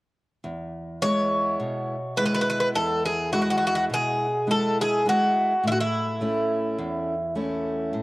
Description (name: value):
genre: greek folk, Greek bouzouki band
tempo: 104 BPM (eighths)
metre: 9/8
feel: straight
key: E major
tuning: A4 = 443 Hz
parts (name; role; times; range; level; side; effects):
- fingerpicked steel-string acoustic guitar; accompaniment; 0.4-8.0 s; E2 to E4; -27 LUFS; equal; cassette tape
- Greek bouzouki; melody; 1.0-8.0 s; E4 to C#5; -24 LUFS; equal; cassette tape
room: moderate spring reverb, RT60 2.6 s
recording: home recording on cassette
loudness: -22 LUFS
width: side -20 dB against mid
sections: 0.4-8.0 A section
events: none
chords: 0.4 E; 5.6 A